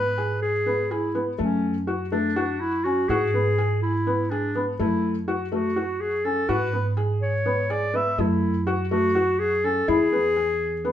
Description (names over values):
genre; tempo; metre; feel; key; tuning
contemporary instrumental, contemporary; 247 BPM (eighths); 7/8; straight; F# minor; A4 = 440 Hz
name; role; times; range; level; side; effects
clear clarinet; melody; 0.0-10.9 s; C#4 to E5; -24 LUFS; left 1 dB; none
felt-muted upright piano; arpeggios; 0.0-10.9 s; A3 to G#4; -26 LUFS; left 2 dB; none
upright bass; bass; 0.0-10.9 s; E2 to G#2; -28 LUFS; right 2 dB; none
room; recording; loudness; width
moderate studio reverb, RT60 0.8 s; heard from further back in the room; -21 LUFS; side -10 dB against mid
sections
0.0-10.9 A section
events
none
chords
0.0 G#m; 1.4 F#m; 3.1 G#dim; 4.8 F#m7; 6.5 G#madd11; 8.2 F#m7; 9.9 E